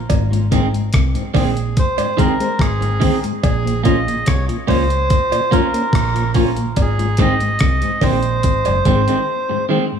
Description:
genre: roots reggae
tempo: 72 BPM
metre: 4/4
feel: straight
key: unclear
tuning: A4 = 439 Hz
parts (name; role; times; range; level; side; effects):
- deep dub fingered electric bass; bass; 0.0-9.1 s; Gb1 to Db2; -19 LUFS; equal; none
- breakbeat sampler-style drum kit; drums; 0.1-9.3 s; hi-hat, kick drum, rim click; -18 LUFS; equal; none
- cowbell; percussion; 0.1-8.8 s; none; -27 LUFS; right 6 dB; none
- mellow tonewheel organ; accompaniment; 0.3-10.0 s; Ab2 to Db4; -23 LUFS; left 5 dB; chorus vibrato, slow rotary speaker, tape echo
- electric guitar at the edge of break-up; accompaniment; 0.5-9.8 s; Eb3 to F4; -22 LUFS; right 4 dB; tape echo
- melodica; melody; 1.4-9.7 s; Ab4 to Eb5; -21 LUFS; right 1 dB; tape echo
room: light reverb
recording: studio ambience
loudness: -14 LUFS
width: side -7 dB against mid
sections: 0.0-10.0 A section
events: break 9.3-10.0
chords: 0.1 Ab; 3.4 Bbm; 6.8 Ab

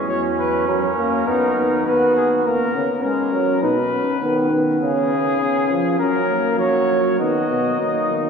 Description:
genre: classical, imitative canzona for brass ensemble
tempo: 101 BPM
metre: 4/4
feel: straight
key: B major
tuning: A4 = 439 Hz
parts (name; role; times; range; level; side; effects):
- mellow trumpet; melody; 0.0-8.3 s; G#4 to D#5; -23 LUFS; left 4 dB; none
- mellow trumpet; second line; 0.0-2.4, 7.2-8.3 s; C#4 to F#4; -27 LUFS; right 5 dB; none
- mellow trombone; accompaniment; 0.0-8.3 s; F#3 to D#4; -21 LUFS; left 1 dB; none
- warm bass trombone; bass; 0.0-8.3 s; C#2 to G#3; -21 LUFS; right 2 dB; none
room: wet cathedral reverb, RT60 5.3 s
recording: recorded in a church or concert hall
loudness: -16 LUFS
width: side -6 dB against mid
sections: 0.0-7.2 A section; 7.2-8.3 B section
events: none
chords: 0.1 F#; 1.3 B; 2.4 F#/C#; 3.6 Badd9; 4.8 C#; 6.0 F#; 7.2 B

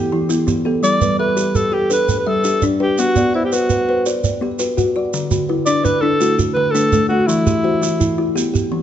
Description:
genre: southern african traditional, mbira-style interlocking cycle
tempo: 112 BPM (dotted quarters)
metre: 12/8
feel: straight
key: G major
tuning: A4 = 438 Hz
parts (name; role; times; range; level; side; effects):
- breathy alto saxophone; melody; 0.0-8.4 s; E4 to D5; -18 LUFS; equal; none
- kalimba; arpeggios; 0.0-8.8 s; D3 to D5; -20 LUFS; left 4 dB; none
- kalimba; arpeggios; 0.0-8.8 s; D3 to F#5; -22 LUFS; right 4 dB; tape echo
- shekere; percussion; 0.3-8.7 s; none; -23 LUFS; right 5 dB; none
room: moderate recital hall reverb, RT60 1.6 s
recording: dark, warm production, nothing above 8.0 kHz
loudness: -14 LUFS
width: side -10 dB against mid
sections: 0.8-8.8 A section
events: none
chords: 0.0 Em; 0.8 G; 3.0 Bm; 5.1 D; 7.3 Em

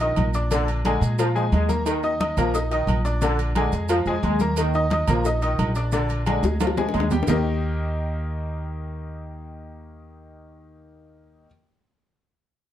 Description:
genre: latin, salsa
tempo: 177 BPM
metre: 4/4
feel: straight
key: Eb major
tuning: A4 = 440 Hz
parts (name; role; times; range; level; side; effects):
- mellow trombone section; second line; 0.0-7.4 s; D3 to Ab3; -28 LUFS; equal; none
- bright upright piano; accompaniment; 0.0-11.5 s; D3 to Eb6; -26 LUFS; left 2 dB; none
- upright bass; bass; 0.0-11.4 s; Bb1 to Bb2; -25 LUFS; equal; none
- agogo bells and timbales; percussion; 0.0-7.4 s; none; -32 LUFS; right 6 dB; none
- congas; percussion; 0.0-7.4 s; none; -29 LUFS; equal; none
- maracas; percussion; 0.0-7.4 s; none; -40 LUFS; right 8 dB; none
- cowbell and bongos; percussion; 0.2-7.4 s; none; -30 LUFS; left 5 dB; none
room: light reverb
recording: dark, warm production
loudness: -20 LUFS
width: side -11 dB against mid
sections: 0.0-7.3 A section; 7.3-10.0 B section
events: drum fill 6.4-7.3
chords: 0.0 Eb5; 0.5 Bb7; 1.9 Eb5; 3.2 Bb7; 4.6 Eb5; 5.9 Bb7; 7.3 Eb

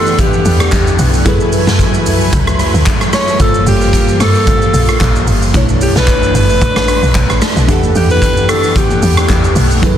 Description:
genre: amapiano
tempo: 112 BPM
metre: 4/4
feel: swing 55% on 16ths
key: E dorian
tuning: A4 = 441 Hz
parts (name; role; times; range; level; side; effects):
- warm alto saxophone; melody; 0.0-9.6 s; G4 to C#5; -17 LUFS; equal; tape echo
- glassy digital keys; accompaniment; 0.0-10.0 s; B2 to F#5; -19 LUFS; right 1 dB; chorus
- lush unison pad; sustained chords; 0.0-10.0 s; E3 to G#5; -20 LUFS; equal; chorus
- woody log drum bass; bass; 0.0-10.0 s; G1 to E3; -14 LUFS; equal; none
- raw garage drum kit; drums; 0.1-10.0 s; handclaps, hi-hat, kick drum, rim click, shaker, snare drum; -13 LUFS; equal; none
- congas; percussion; 7.7-10.0 s; none; -24 LUFS; left 3 dB; none
room: light reverb, studio reverb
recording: dense, heavily limited modern master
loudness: -9 LUFS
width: side -10 dB against mid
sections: 0.0-10.0 A section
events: none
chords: 0.0 Em11; 1.3 F#m11; 3.4 Gm11; 5.5 Bm11; 7.7 Em11

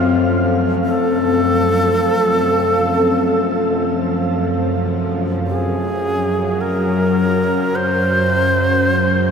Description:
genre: dark ambient drone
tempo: free time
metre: none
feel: none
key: unclear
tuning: A4 = 440 Hz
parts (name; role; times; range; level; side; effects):
- breathy bright long shakuhachi; melody; 0.0-9.3 s; F4 to B#4; -19 LUFS; right 1 dB; shimmer reverb, ping-pong delay
- deep dark ambient pad; sustained chords; 0.0-9.3 s; C4 to E#5; -20 LUFS; left 2 dB; chorus, built-in reverb, shimmer reverb
- bowed-like drone; drone; 0.0-9.3 s; F#2 to F#3; -19 LUFS; equal; built-in reverb
- bronze singing bowl; texture; 0.0-5.5 s; none; barely audible; none; none
room: wet huge ambient reverb, RT60 7.9 s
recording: none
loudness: -14 LUFS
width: side -6 dB against mid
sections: 0.0-5.5 A section; 5.5-9.3 B section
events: none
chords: 0.0 F; 5.5 C#

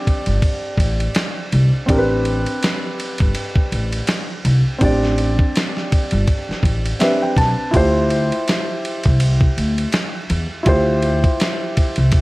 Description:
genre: hip hop, jazz-hop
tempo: 82 BPM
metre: 4/4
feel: swing 57% on 16ths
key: A minor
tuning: A4 = 440 Hz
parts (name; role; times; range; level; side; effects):
- dark grand piano; accompaniment; 0.0-12.2 s; C4 to A5; -21 LUFS; equal; none
- dusty soul sampler-style drum kit; drums; 0.1-12.2 s; hi-hat, kick drum, ride cymbal, snare drum; -20 LUFS; equal; none
- upright bass; bass; 0.3-12.1 s; G1 to E2; -18 LUFS; equal; none
room: light reverb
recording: vinyl crackle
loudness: -15 LUFS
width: side -21 dB against mid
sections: 0.0-12.2 A section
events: grand piano fill 6.6-7.7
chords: 0.0 Am11; 7.7 Dm11

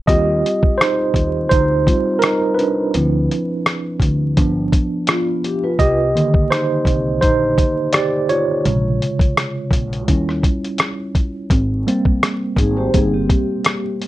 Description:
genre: lo-fi hip hop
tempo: 84 BPM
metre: 4/4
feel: swing 55% on 16ths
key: unclear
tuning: A4 = 439 Hz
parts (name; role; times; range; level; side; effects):
- tine electric piano; accompaniment; 0.0-14.1 s; C3 to Eb5; -18 LUFS; right 2 dB; overdrive, medium stereo tremolo, cassette tape, low-pass filter
- upright bass; bass; 0.1-13.3 s; G1 to Eb2; -21 LUFS; equal; none
- lo-fi sampler-style drum kit; drums; 0.1-14.1 s; hi-hat, kick drum, rim click; -16 LUFS; equal; vintage 12-bit sampler grit
- vibraphone with soft mallets; second line; 5.1-6.0, 12.6-14.1 s; B3 to C5; -21 LUFS; left 2 dB; low-pass filter, analog delay
room: light reverb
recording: vinyl crackle, tape stop, nothing above 10.8 kHz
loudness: -15 LUFS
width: side -16 dB against mid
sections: 0.1-14.1 A section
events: tine electric piano solo 0.1-14.1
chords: 0.1 Eb6; 2.9 Dm7; 4.4 G7; 5.8 Cm7; 8.6 Bbm9; 10.1 Eb7b9; 11.5 Abmaj7

